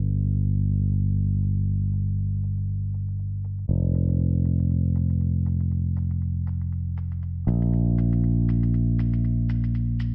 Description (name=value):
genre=deep house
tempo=119 BPM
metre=4/4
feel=swing 56% on 16ths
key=G minor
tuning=A4 = 440 Hz
part: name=fingered electric bass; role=bass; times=0.0-10.1 s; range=F1 to Bb1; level=-24 LUFS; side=equal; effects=none
part: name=shaker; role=drums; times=0.1-10.1 s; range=none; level=-55 LUFS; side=equal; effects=studio reverb
room=digital ambience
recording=bright 1980s-style digital production, low-pass filter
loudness=-25 LUFS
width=mono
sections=0.0-10.1 A section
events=filter sweep 0.0-10.1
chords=none